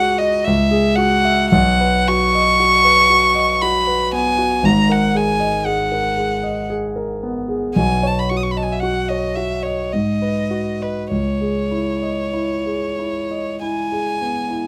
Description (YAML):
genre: classical, impressionist duo for violin and grand piano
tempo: 45-59 BPM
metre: 3/4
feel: rubato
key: C# minor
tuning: A4 = 440 Hz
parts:
  - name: warm violin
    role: melody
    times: 0.0-14.7 s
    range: B4 to D#6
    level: -20 LUFS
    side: equal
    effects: none
  - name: dark concert grand piano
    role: accompaniment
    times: 0.0-14.7 s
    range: G#1 to E5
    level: -21 LUFS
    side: equal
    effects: none
room: light reverb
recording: close, detailed microphones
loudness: -18 LUFS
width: mono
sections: 0.0-14.7 A section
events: none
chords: 0.5 E69/C#; 1.5 Badd9; 4.6 G#m9; 7.7 Badd9; 9.9 G#m7; 11.1 C#m9